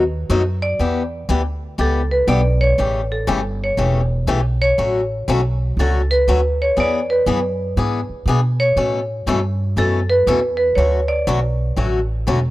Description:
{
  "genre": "acoustic string swing (jazz manouche)",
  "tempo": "120 BPM",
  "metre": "4/4",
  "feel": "swing 65% on 8ths",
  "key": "D major",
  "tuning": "A4 = 440 Hz",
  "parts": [
    { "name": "marimba with hard mallets", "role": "melody", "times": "0.0-12.0 s", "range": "A4 to D5", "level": "-20 LUFS", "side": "right 1 dB", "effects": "none" },
    { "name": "picked swing-style acoustic guitar", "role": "accompaniment", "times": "0.0-12.4 s", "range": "B2 to A4", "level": "-21 LUFS", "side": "left 4 dB", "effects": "none" },
    { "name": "upright bass", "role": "bass", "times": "0.0-12.5 s", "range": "E1 to B2", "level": "-20 LUFS", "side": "equal", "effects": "none" }
  ],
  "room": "little or no reverb",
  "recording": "dry, close 1970s-style studio recording",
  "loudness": "-16 LUFS",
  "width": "side -17 dB against mid",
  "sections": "0.0-12.5 A section",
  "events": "none",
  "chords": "0.0 B7; 0.8 Em7; 2.8 A7; 4.8 Dmaj7; 6.8 E7; 8.8 Aadd9; 10.8 Dmaj7",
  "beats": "0.29 | 0.79 1.29 1.79 2.29 | 2.78 3.28 3.78 4.28 | 4.78 5.28 5.78 6.27 | 6.77 7.27 7.77 8.27 | 8.77 9.27 9.77 10.27 | 10.77 11.26 11.76 12.26"
}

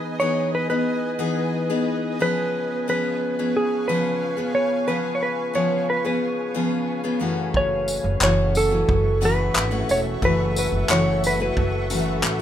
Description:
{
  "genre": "acoustic pop",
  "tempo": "90 BPM",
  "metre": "4/4",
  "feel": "straight",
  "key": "unclear",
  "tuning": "A4 = 440 Hz",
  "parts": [
    { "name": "picked steel-string acoustic guitar", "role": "accompaniment", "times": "0.0-12.4 s", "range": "F#2 to G#4", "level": "-24 LUFS", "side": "left 2 dB", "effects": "none" },
    { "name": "granular cloud pad", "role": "sustained chords", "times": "0.0-12.4 s", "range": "A4 to D#6", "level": "-32 LUFS", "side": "right 1 dB", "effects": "built-in reverb" },
    { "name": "clean lap steel guitar", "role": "melody", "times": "0.2-12.4 s", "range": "G#4 to C#5", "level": "-23 LUFS", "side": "right 1 dB", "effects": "none" },
    { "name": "upright bass", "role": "bass", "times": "7.5-12.4 s", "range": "E1 to A1", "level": "-25 LUFS", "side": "equal", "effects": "none" },
    { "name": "unplugged drum kit", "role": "drums", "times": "7.5-12.4 s", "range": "handclaps, kick drum, tambourine", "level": "-24 LUFS", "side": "equal", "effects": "none" }
  ],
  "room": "light reverb",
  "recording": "minimal, uncompressed stereo recording",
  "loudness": "-20 LUFS",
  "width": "side -10 dB against mid",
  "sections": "0.0-12.4 A section",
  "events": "none",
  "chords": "0.0 Emaj7; 2.2 C#7; 7.2 F#m7",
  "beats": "0.18 0.85 1.52 | 2.19 2.86 3.53 4.20 | 4.87 5.54 6.21 6.88 | 7.55 8.22 8.89 9.56 | 10.23 10.90 11.57 12.24"
}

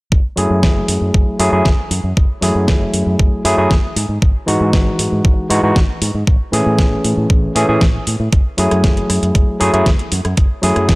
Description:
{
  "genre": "nu-disco, nu disco",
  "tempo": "117 BPM",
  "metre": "4/4",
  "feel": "straight",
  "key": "F# dorian",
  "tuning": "A4 = 440 Hz",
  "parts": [
    { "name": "fingered electric bass with an envelope filter", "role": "bass", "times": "0.1-11.0 s", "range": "F#1 to A2", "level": "-18 LUFS", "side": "equal", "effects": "sidechain pumping" },
    { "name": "electronic kick drum", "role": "drums", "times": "0.1-11.0 s", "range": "none", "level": "-13 LUFS", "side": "equal", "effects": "overdrive" },
    { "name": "overdriven tine electric piano", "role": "accompaniment", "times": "0.4-11.0 s", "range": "E3 to G#4", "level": "-17 LUFS", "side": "equal", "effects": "sidechain pumping, low-pass filter, analog delay" },
    { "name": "pop drum kit", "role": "drums", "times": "0.4-11.0 s", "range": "hi-hat, rim click, snare drum", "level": "-21 LUFS", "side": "equal", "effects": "none" }
  ],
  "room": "light reverb, digital ambience",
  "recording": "dry, gritty hardware recording",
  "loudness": "-12 LUFS",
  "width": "side -23 dB against mid",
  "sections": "0.1-11.0 A section",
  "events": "none",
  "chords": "0.1 F#m9; 4.0 Emaj9/G#; 6.3 Amaj7; 8.3 F#m9",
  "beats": "| 0.12 0.63 1.15 1.66 | 2.17 2.68 3.20 3.71 | 4.22 4.74 5.25 5.76 | 6.27 6.79 7.30 7.81 | 8.32 8.84 9.35 9.86 | 10.38 10.89"
}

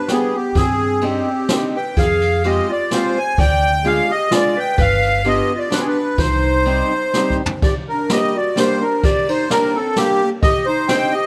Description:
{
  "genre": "musette waltz",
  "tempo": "128 BPM",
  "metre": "3/4",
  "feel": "rubato",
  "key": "C harmonic minor, G harmonic minor from 7.6 s",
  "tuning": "A4 = 440 Hz",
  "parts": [
    { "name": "accordion", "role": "melody", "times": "0.0-11.3 s", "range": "G4 to Ab5", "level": "-21 LUFS", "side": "equal", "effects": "light tremolo tuning" },
    { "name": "warm clarinet", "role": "second line", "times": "0.0-11.3 s", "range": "Bb3 to D5", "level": "-24 LUFS", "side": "equal", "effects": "none" },
    { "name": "picked acoustic archtop guitar", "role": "accompaniment", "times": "0.1-11.1 s", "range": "G3 to Ab4", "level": "-26 LUFS", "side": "equal", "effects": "none" },
    { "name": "jazz brush drum kit", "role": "drums", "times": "0.1-11.0 s", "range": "kick drum, ride cymbal, snare drum, toms", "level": "-24 LUFS", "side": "equal", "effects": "none" },
    { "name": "upright bass", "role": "bass", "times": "0.6-6.8 s", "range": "G1 to G2", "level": "-24 LUFS", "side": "equal", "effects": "none" }
  ],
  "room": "light reverb",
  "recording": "close, detailed microphones",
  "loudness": "-17 LUFS",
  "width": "mono",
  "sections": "0.0-7.6 A section; 7.6-11.3 B section",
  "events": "drum fill 7.2-7.6",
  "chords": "0.0 G; 0.6 Cmadd9/G; 2.0 Fmadd9; 3.4 Ddim; 4.8 G7; 6.2 Cm; 7.6 Gm; 10.4 Cmadd9",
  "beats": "0.10 | 0.56 1.03 1.50 | 1.98 2.46 2.93 | 3.40 3.86 4.33 | 4.79 5.26 5.73 | 6.20 6.67 7.15 | 7.63 8.11 8.58 | 9.04 9.51 9.97 | 10.43 10.89"
}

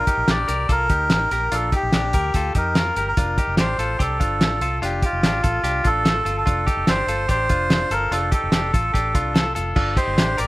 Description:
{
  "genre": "jangly indie pop",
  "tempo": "146 BPM",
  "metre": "4/4",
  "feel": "straight",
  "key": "unclear",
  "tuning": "A4 = 440 Hz",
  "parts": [
    { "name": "melodica", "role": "melody", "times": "0.0-10.5 s", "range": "F4 to D5", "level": "-22 LUFS", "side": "right 1 dB", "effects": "none" },
    { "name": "direct-recorded clean electric guitar", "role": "arpeggios", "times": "0.0-10.5 s", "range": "D4 to Bb4", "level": "-26 LUFS", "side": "left 3 dB", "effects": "none" },
    { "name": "cloth-damped thuddy drum kit", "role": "drums", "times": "0.1-10.5 s", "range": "crash cymbal, hi-hat, kick drum, snare drum", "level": "-20 LUFS", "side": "equal", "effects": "none" },
    { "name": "vintage muted fingered electric bass", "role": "bass", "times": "0.2-10.5 s", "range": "F1 to F2", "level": "-26 LUFS", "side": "equal", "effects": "none" }
  ],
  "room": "light reverb, small room ambience",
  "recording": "rough home demo mix",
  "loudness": "-18 LUFS",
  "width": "side -19 dB against mid",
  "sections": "0.0-9.8 A section",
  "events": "none",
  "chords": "0.0 Bb; 3.2 F6; 9.8 Gmadd9",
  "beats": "0.28 0.69 1.11 | 1.52 1.93 2.35 2.76 | 3.17 3.58 4.00 4.41 | 4.82 5.23 5.64 6.06 | 6.47 6.88 7.29 7.71 | 8.12 8.53 8.94 9.35 | 9.76 10.18"
}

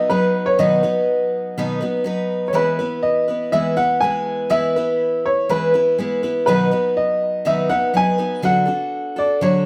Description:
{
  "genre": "rock",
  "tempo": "122 BPM",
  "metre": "4/4",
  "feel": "straight",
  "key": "E major",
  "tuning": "A4 = 436 Hz",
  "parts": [
    { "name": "clear baby grand piano", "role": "melody", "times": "0.0-9.7 s", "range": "B4 to G#5", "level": "-21 LUFS", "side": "equal", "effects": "plate reverb, analog delay" },
    { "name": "picked steel-string acoustic guitar", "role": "accompaniment", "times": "0.0-9.7 s", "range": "B2 to B4", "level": "-22 LUFS", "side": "equal", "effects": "none" }
  ],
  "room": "moderate small room reverb, RT60 0.5 s",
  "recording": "rough home demo mix",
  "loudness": "-19 LUFS",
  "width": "mono",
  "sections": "0.0-2.6 A section; 2.6-9.7 A section",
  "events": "none",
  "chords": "0.0 B; 2.6 E; 6.5 B; 8.4 D",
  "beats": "0.10 | 0.59 1.08 1.57 2.06 | 2.56 3.05 3.54 4.03 | 4.52 5.01 5.50 5.99 | 6.48 6.97 7.46 7.95 | 8.44 8.93 9.42"
}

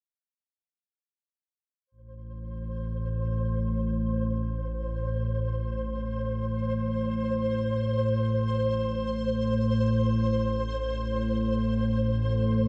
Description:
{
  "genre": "dark ambient drone",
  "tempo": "free time",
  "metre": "none",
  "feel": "none",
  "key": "A minor",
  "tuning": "A4 = 444 Hz",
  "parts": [
    { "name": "analog drone", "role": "drone", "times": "2.1-12.7 s", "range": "A1 to A2", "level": "-29 LUFS", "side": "equal", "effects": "chorus" },
    { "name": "flickering grainy texture", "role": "texture", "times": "2.6-12.7 s", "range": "C5", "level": "-35 LUFS", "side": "equal", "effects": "built-in reverb" }
  ],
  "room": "wet lush hall reverb, RT60 3.2 s",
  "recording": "dreamy mix soaked in reverb",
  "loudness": "-28 LUFS",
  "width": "mono",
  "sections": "1.9-12.7 A section",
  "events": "none",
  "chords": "1.9 Am",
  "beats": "free time"
}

